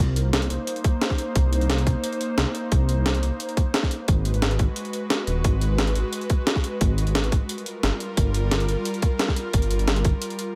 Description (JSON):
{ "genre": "liquid drum and bass", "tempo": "176 BPM", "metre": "4/4", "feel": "straight", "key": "unclear", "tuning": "A4 = 441 Hz", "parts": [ { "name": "airy breathy pad", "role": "sustained chords", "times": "0.0-10.6 s", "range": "G3 to C5", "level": "-32 LUFS", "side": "equal", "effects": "chorus, sidechain pumping" }, { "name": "dark detuned saw bass", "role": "bass", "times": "0.0-10.1 s", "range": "Eb1 to C2", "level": "-25 LUFS", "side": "equal", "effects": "none" }, { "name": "breakbeat sampler-style drum kit", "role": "drums", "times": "0.2-10.5 s", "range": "hi-hat, snare drum", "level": "-28 LUFS", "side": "equal", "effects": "none" }, { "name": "electronic kick drum", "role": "drums", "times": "0.8-10.1 s", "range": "none", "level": "-24 LUFS", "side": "equal", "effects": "overdrive" } ], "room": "digital ambience", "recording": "none", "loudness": "-23 LUFS", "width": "mono", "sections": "0.0-10.6 A section", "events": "none", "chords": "0.0 Cm7; 3.9 Abm7; 7.5 Gm7" }